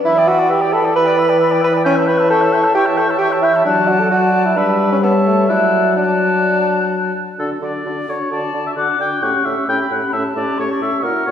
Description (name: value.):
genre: quick classical-period movement for wind quintet.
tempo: 132 BPM.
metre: 4/4.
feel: rubato.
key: D major.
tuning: A4 = 440 Hz.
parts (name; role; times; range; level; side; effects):
warm clarinet; accompaniment; 0.0-11.3 s; F#4 to E5; -24 LUFS; right 3 dB; none.
mellow bassoon; bass; 0.0-11.3 s; A2 to B4; -17 LUFS; right 1 dB; none.
silver concert flute; melody; 0.1-11.3 s; F#5 to D6; -24 LUFS; left 4 dB; none.
warm oboe; second line; 0.1-11.3 s; A4 to G5; -20 LUFS; left 2 dB; none.
mellow French horn; accompaniment; 0.1-11.3 s; E3 to E4; -20 LUFS; left 2 dB; none.
room: wet concert hall reverb, RT60 1.8 s.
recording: heard from further back in the room.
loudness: -13 LUFS.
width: side -9 dB against mid.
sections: 0.0-7.4 A section; 7.4-11.3 A section.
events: none.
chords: 0.1 Em7; 1.9 A7/E; 3.6 D/F#; 4.6 Em7/G; 5.0 A7/G; 5.5 D/F#; 7.4 D; 9.2 A7.